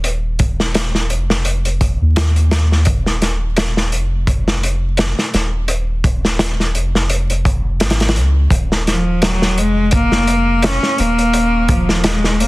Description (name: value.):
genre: trip hop.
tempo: 85 BPM.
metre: 4/4.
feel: swing 56% on 16ths.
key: Eb minor.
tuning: A4 = 442 Hz.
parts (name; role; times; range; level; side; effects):
soft dub sub bass; bass; 0.0-12.5 s; Eb1 to Eb2; -17 LUFS; equal; none.
crunchy breakbeat drum kit; drums; 0.0-12.5 s; hi-hat, kick drum, snare drum; -16 LUFS; equal; none.
bright cello; melody; 8.9-12.5 s; F3 to Db4; -15 LUFS; left 1 dB; tape echo.
room: little or no reverb.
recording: dense, heavily limited modern master, vinyl crackle.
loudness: -13 LUFS.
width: side -20 dB against mid.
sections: 0.0-12.5 A section.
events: none.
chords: 0.0 Ebsus2; 5.7 Ebsus4; 8.5 Eb5.